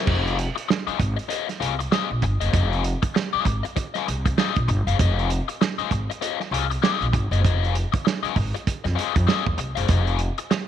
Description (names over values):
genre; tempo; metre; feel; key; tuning
funk; 98 BPM; 4/4; swing 60% on 16ths; F minor; A4 = 440 Hz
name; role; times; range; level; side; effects
overdriven semi-hollow guitar; accompaniment; 0.0-10.5 s; C4 to F5; -26 LUFS; left 12 dB; wah
upright bass; bass; 0.1-10.3 s; F1 to F2; -23 LUFS; equal; none
warm soul drum kit; drums; 0.1-10.7 s; crash cymbal, hi-hat, kick drum, snare drum; -24 LUFS; right 4 dB; none
room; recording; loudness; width
light reverb, small room reverb; 1960s-style stereo; -20 LUFS; side -10 dB against mid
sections
0.1-10.7 A section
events
none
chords
0.1 Fm7